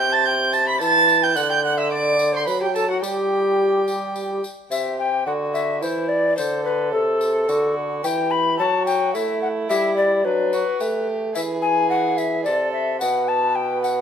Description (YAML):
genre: classical, renaissance-style consort dance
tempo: 108 BPM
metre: 3/4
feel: straight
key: unclear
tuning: A4 = 441 Hz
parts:
  - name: mellow hollow tenor recorder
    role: melody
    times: 0.0-14.0 s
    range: F#4 to B5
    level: -21 LUFS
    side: left 4 dB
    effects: none
  - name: rich violin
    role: second line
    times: 0.0-14.0 s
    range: D4 to B6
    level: -24 LUFS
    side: right 5 dB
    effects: none
  - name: mellow bassoon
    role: bass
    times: 0.0-14.0 s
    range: B2 to A3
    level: -23 LUFS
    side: right 1 dB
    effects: none
  - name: tambourine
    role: percussion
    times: 0.5-14.0 s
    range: none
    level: -38 LUFS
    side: left 4 dB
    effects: none
room: moderate stone room reverb, RT60 1.1 s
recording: heard from further back in the room, lossy compression artefacts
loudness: -18 LUFS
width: side -8 dB against mid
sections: 0.0-4.7 A section; 4.7-14.0 B section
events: none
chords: 0.0 C; 1.4 D; 3.0 N.C.; 4.7 C; 6.4 D; 8.0 Em; 9.7 G; 11.4 E; 13.0 A7sus2